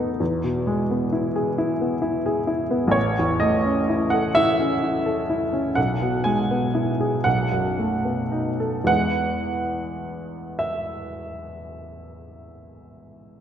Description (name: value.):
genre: classical, romantic nocturne for solo piano.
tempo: 34-45 BPM (dotted quarters).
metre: 12/8.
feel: rubato.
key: E major.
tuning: A4 = 438 Hz.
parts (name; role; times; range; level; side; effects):
warm upright piano; solo; 0.0-13.4 s; A1 to G#5; -21 LUFS; equal; none.
room: wet scoring stage reverb, RT60 1.9 s.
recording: dark, warm production.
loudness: -20 LUFS.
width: side -9 dB against mid.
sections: 0.0-13.4 A section.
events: none.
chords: 0.2 E; 3.0 A; 5.8 E/B; 7.3 B7; 8.9 E.